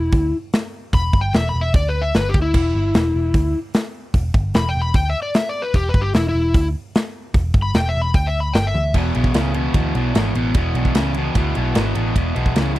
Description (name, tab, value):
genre	blues rock power trio and southern rock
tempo	150 BPM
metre	4/4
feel	straight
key	unclear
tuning	A4 = 439 Hz
part	overdriven slide guitar	melody	0.0-8.9 s	E4 to B5	-22 LUFS	left 2 dB	none
part	vintage muted picked electric bass	bass	0.0-12.8 s	E1 to D2	-20 LUFS	equal	none
part	big rock drum kit	drums	0.1-12.8 s	crash cymbal, hi-hat, kick drum, ride cymbal, snare drum, toms	-19 LUFS	equal	none
part	cranked stack guitar	riff	9.0-12.8 s	E2 to C#3	-21 LUFS	equal	overdrive
room	little or no reverb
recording	dry, close 1970s-style studio recording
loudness	-16 LUFS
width	side -16 dB against mid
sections	0.0-8.9 A section; 8.9-12.8 B section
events	electric slide guitar solo 0.0-8.9; drum fill 8.7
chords	0.0 E5; 1.7 Bmadd11/D; 2.1 Em7; 8.1 G6/D; 8.5 Em7/G; 8.9 E5